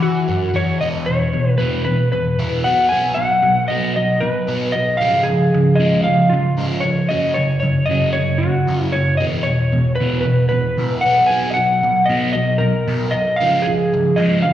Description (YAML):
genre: rock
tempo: 114 BPM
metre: 4/4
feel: straight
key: unclear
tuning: A4 = 440 Hz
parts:
  - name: electric slide guitar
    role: melody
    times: 0.0-14.5 s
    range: E#4 to G#5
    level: -18 LUFS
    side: equal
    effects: slapback echo
  - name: crunchy overdriven guitar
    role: riff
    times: 0.0-14.5 s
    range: E2 to B3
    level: -18 LUFS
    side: equal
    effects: phaser, slapback echo
room: moderate lush hall reverb, RT60 2.5 s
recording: live gig heard through the venue's PA, recital hall reverb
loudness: -15 LUFS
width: side -11 dB against mid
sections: 0.8-14.5 A section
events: none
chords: 0.0 F#5; 0.8 E5; 2.6 B5; 5.0 C#; 7.1 F#5; 9.2 E5; 11.0 B5; 13.4 C#